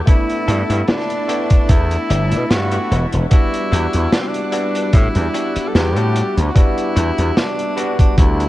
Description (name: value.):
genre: vaporwave.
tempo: 74 BPM.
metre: 4/4.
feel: swing 54% on 16ths.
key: E minor.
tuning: A4 = 440 Hz.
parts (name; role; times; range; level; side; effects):
lush unison pad; sustained chords; 0.6-8.5 s; G3 to A5; -31 LUFS; left 1 dB; none.
direct-recorded clean electric guitar; riff; 0.0-8.2 s; G3 to A4; -31 LUFS; left 4 dB; wide subtle chorus, tape echo.
clear tenor saxophone; melody; 0.1-8.5 s; C4 to A4; -23 LUFS; equal; vintage 12-bit sampler grit, tape echo.
barky tine electric piano; accompaniment; 0.1-8.5 s; G3 to F#4; -23 LUFS; equal; wide subtle chorus, tape echo.
crunchy breakbeat drum kit; drums; 0.1-8.5 s; hi-hat, snare drum; -22 LUFS; equal; none.
electronic kick drum; drums; 0.1-8.4 s; none; -11 LUFS; equal; none.
gritty slap bass; bass; 0.5-8.4 s; E1 to B2; -17 LUFS; equal; overdrive.
room: small room ambience.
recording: cassette tape.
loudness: -14 LUFS.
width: side -16 dB against mid.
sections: 0.0-8.5 A section.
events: none.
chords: 0.0 G69; 2.9 Em9.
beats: | 0.07 0.88 1.69 2.50 | 3.31 4.13 4.94 5.75 | 6.56 7.37 8.18.